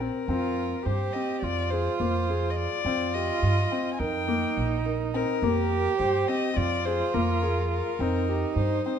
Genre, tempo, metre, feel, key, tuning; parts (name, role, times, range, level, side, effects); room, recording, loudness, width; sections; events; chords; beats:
contemporary instrumental, chamber music in an uneven meter; 210 BPM (eighths); 9/8; straight; A4 = 440 Hz
dark violin; melody; 0.0-9.0 s; Bb4 to Ab5; -30 LUFS; left 7 dB
felt-muted upright piano; arpeggios; 0.0-9.0 s; Bb3 to Bb4; -31 LUFS; left 3 dB
upright bass; bass; 0.0-8.8 s; Bb1 to G2; -29 LUFS; right 2 dB
warm cello; second line; 0.3-9.0 s; Eb4 to G4; -30 LUFS; right 7 dB
moderate scoring stage reverb, RT60 1.8 s; close, detailed microphones; -24 LUFS; side -8 dB against mid
0.0-9.0 A section
0.3 C7sus4/F; 1.4 Bb5/F; 2.9 Cm/F; 4.0 Eb; 5.4 C7sus4/F; 6.6 Bb5/F; 8.0 Cm7/F
0.00 | 0.28 0.57 0.85 1.14 1.43 1.71 2.00 2.29 2.57 | 2.86 3.14 3.43 3.71 4.00 4.29 4.57 4.86 5.14 | 5.43 5.71 6.00 6.29 6.57 6.86 7.14 7.43 7.71 | 8.00 8.29 8.57 8.86